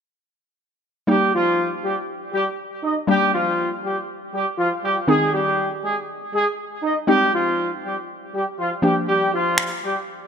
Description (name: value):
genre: dance-pop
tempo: 120 BPM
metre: 4/4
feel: straight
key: Eb major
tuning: A4 = 438 Hz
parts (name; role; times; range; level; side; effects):
- warm horn section; melody; 1.1-9.9 s; F3 to Eb5; -20 LUFS; equal; digital delay
- hollow square pluck; accompaniment; 1.1-10.3 s; Eb3 to Eb4; -23 LUFS; left 1 dB; chorus
- electronic finger snaps; drums; 9.6-9.7 s; none; -24 LUFS; equal; overdrive
room: moderate lush hall reverb, RT60 2.2 s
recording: bright 1980s-style digital production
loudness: -19 LUFS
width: side -7 dB against mid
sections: 1.1-10.3 A section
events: none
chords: 1.1 Eb; 5.1 Ab; 8.8 Bb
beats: | 1.08 1.58 2.08 2.58 | 3.08 3.58 4.08 4.58 | 5.08 5.58 6.08 6.58 | 7.08 7.58 8.08 8.58 | 9.08 9.58 10.08